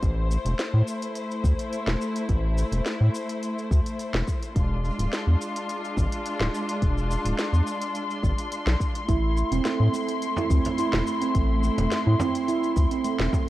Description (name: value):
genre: organic downtempo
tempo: 106 BPM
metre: 4/4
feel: straight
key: A harmonic minor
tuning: A4 = 440 Hz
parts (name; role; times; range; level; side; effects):
- muted studio string section; sustained chords; 0.0-13.5 s; G#3 to C6; -30 LUFS; left 2 dB; sidechain pumping
- round analog bass; bass; 0.0-13.3 s; D1 to A2; -23 LUFS; equal; tube saturation, sidechain pumping
- afro-pop drum kit; drums; 0.0-13.5 s; hi-hat, shaker, snare drum; -32 LUFS; equal; none
- electronic kick drum; drums; 0.0-13.4 s; none; -26 LUFS; equal; none
- handpan; arpeggios; 9.1-13.5 s; A3 to E4; -26 LUFS; right 5 dB; ping-pong delay
- frame drum; percussion; 10.4-13.4 s; none; -32 LUFS; right 1 dB; none
room: light reverb, small room ambience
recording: worn, warbling old tape, cassette tape, warbly pitch drift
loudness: -23 LUFS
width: side -15 dB against mid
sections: 0.0-13.5 A section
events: none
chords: 0.0 Am; 4.6 E7b9b13; 9.1 Am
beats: | 0.03 0.59 1.16 1.73 | 2.29 2.86 3.42 3.99 | 4.55 5.12 5.69 6.25 | 6.82 7.38 7.95 8.52 | 9.08 9.65 10.21 10.78 | 11.35 11.91 12.48 13.04